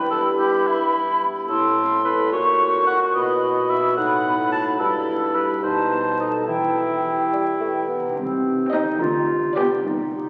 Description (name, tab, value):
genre	cinematic, playful, whimsical film cue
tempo	72 BPM (dotted quarters)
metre	6/8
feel	straight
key	E minor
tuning	A4 = 440 Hz
part	hollow small flute group	second line	0.0-7.9 s	G5 to C#6	-25 LUFS	equal	none
part	mellow clarinet	second line	0.0-10.3 s	C4 to G4	-28 LUFS	equal	none
part	mellow bassoon	accompaniment	0.0-8.2 s	G2 to B3	-29 LUFS	equal	none
part	concert harp	arpeggios	0.0-10.3 s	G2 to E5	-30 LUFS	equal	none
part	warm cor anglais	second line	0.1-7.9 s	D#4 to A5	-26 LUFS	equal	none
part	rich chamber double bass section	bass	8.2-10.3 s	C2 to D2	-38 LUFS	equal	none
part	warm chamber cello section	bass	8.2-10.3 s	C3 to D3	-38 LUFS	equal	none
part	warm chamber violin section	melody	8.7-9.8 s	Eb5 to G5	-35 LUFS	equal	none
part	warm symphonic violin section	second line	8.7-9.8 s	D5 to Eb5	-35 LUFS	equal	none
part	rich chamber viola section	accompaniment	8.7-9.8 s	B3 to C4	-34 LUFS	equal	none
room	wet concert hall reverb, RT60 2.4 s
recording	very old 78 rpm record, vinyl crackle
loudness	-21 LUFS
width	mono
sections	0.0-8.2 A section; 8.2-10.3 B section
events	none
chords	0.0 Em/G; 1.5 Am; 2.3 F#7/A#; 3.1 B; 4.0 B7/A; 4.8 Em/G; 5.6 B7b9; 6.5 Em; 8.2 Cm; 9.0 G7/D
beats	0.67 | 1.49 2.32 | 3.15 3.97 | 4.80 5.63 | 6.47 7.32 | 8.17 9.01 | 9.84